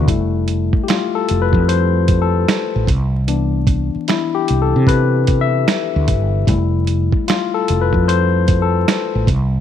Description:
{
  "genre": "R&B, neo-soul",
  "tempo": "75 BPM",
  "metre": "4/4",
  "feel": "swing 64% on 16ths",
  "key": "unclear",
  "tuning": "A4 = 440 Hz",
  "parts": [
    { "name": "barky tine electric piano", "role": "accompaniment", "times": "0.0-9.3 s", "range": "E3 to E5", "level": "-18 LUFS", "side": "left 8 dB", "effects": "overdrive" },
    { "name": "mellow fretless electric bass", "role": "bass", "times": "0.0-9.6 s", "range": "F1 to C3", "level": "-16 LUFS", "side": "right 1 dB", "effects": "none" },
    { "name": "dusty soul sampler-style drum kit", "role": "drums", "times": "0.1-9.5 s", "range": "finger snaps, hi-hat, kick drum, snare drum", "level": "-18 LUFS", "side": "right 2 dB", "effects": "none" }
  ],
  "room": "little or no reverb",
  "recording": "1960s-style stereo, vinyl crackle",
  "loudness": "-14 LUFS",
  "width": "side -9 dB against mid",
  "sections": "0.1-9.6 A section",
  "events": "tine electric piano solo 0.1-9.6",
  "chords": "0.1 Fmaj7; 2.9 Cmaj9; 6.5 Fmaj7"
}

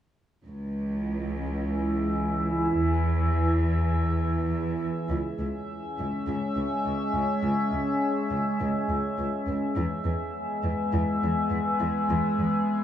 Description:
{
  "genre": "cinematic",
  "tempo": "103 BPM",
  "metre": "4/4",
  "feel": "straight",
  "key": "C# minor",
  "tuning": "A4 = 442 Hz",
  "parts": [
    { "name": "analog drone", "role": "sustained chords", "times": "1.0-12.8 s", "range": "E3 to E5", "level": "-27 LUFS", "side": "equal", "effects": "chorus, low-pass filter" },
    { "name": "clear symphonic cello section", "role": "bass", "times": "0.5-12.5 s", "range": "C#2 to E2", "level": "-28 LUFS", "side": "equal", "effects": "none" }
  ],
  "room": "wet scoring stage reverb, RT60 1.8 s",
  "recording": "small room ambience",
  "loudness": "-25 LUFS",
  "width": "side -10 dB against mid",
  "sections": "0.4-5.1 A section; 5.1-12.8 B section",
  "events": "filter sweep on synth drone 0.4-5.1; build-up 5.1-12.8",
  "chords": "0.4 C#m; 2.8 E; 5.1 C#m; 9.8 E"
}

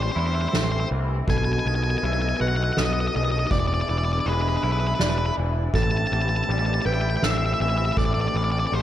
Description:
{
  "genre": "post-rock",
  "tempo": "81 BPM",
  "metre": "3/4",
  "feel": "straight",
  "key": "A minor",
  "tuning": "A4 = 441 Hz",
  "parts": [
    { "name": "octave-fuzz lead guitar", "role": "melody", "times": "0.0-8.8 s", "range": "B4 to A5", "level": "-27 LUFS", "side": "equal", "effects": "distortion, analog delay" },
    { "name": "muted studio string section", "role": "sustained chords", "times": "0.0-8.8 s", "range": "E3 to D#5", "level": "-35 LUFS", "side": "right 1 dB", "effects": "none" },
    { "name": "electric guitar through a small old amp", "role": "arpeggios", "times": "0.0-8.8 s", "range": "E2 to F#4", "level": "-31 LUFS", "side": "left 3 dB", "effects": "ensemble chorus, analog delay" },
    { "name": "growling picked electric bass", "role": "bass", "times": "0.0-8.8 s", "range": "E1 to E2", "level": "-24 LUFS", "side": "equal", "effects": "overdrive" },
    { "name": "felt-muted upright piano", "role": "arpeggios", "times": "0.2-8.7 s", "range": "A4 to B5", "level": "-35 LUFS", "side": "right 4 dB", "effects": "analog delay" },
    { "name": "soft-mallet drum kit", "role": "drums", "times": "0.5-8.8 s", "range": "kick drum, ride cymbal, snare drum", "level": "-28 LUFS", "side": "equal", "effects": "none" }
  ],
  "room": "light reverb, small room ambience",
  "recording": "none",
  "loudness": "-21 LUFS",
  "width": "side -12 dB against mid",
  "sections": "0.0-8.8 A section",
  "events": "none",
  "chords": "0.0 Am7; 1.3 B7; 3.5 E7; 5.7 Am7"
}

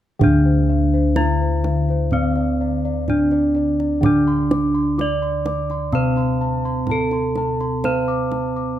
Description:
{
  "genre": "Javanese gamelan",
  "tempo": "63 BPM",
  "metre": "4/4",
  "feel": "straight",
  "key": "unclear",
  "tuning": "A4 = 440 Hz",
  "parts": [
    { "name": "gamelan-type bronze metallophone", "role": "melody", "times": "0.2-8.8 s", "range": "C4-40c to D5", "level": "-21 LUFS", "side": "right 1 dB", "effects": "slapback echo" },
    { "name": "gamelan-type bronze metallophone", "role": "accompaniment", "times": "0.2-8.8 s", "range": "D3 to C4-40c", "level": "-25 LUFS", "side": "right 6 dB", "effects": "none" },
    { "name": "gamelan-type bossed gongs", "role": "arpeggios", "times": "0.2-8.8 s", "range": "C5-40c to D6", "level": "-28 LUFS", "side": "left 4 dB", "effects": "none" },
    { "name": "gamelan-type bossed gongs", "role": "bass", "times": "0.2-8.8 s", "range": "D2 to C5-40c", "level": "-21 LUFS", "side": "left 2 dB", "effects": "none" },
    { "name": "kendang", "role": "percussion", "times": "0.2-8.5 s", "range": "none", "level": "-24 LUFS", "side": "right 3 dB", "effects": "none" }
  ],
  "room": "light reverb",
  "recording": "close, detailed microphones",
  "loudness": "-17 LUFS",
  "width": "side -11 dB against mid",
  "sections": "0.2-8.8 A section",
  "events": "none",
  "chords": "none"
}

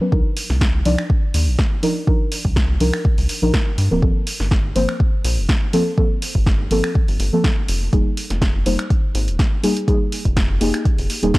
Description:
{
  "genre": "deep house",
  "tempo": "123 BPM",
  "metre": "4/4",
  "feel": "swing 54% on 16ths",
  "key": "C minor",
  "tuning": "A4 = 440 Hz",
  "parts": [
    { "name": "deep mellow chord stab", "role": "stabs", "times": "0.0-11.3 s", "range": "F3 to D5", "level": "-21 LUFS", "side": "equal", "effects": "chorus, cassette tape, analog delay" },
    { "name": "rubbery square bass", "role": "bass", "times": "0.1-11.3 s", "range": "D1 to G2", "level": "-20 LUFS", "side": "equal", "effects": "tube saturation, sidechain pumping" },
    { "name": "electronic kick drum", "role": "drums", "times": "0.1-11.4 s", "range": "none", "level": "-18 LUFS", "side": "equal", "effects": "overdrive" },
    { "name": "punchy analog drum machine", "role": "drums", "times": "0.4-11.4 s", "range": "finger snaps, hi-hat, snare drum", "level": "-25 LUFS", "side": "equal", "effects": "overdrive" }
  ],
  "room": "digital ambience",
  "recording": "dry, gritty hardware recording, cassette tape",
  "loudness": "-16 LUFS",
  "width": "side -20 dB against mid",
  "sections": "0.0-11.4 A section",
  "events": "none",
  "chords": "0.1 Cm11; 3.8 Gm11; 7.7 Fm11"
}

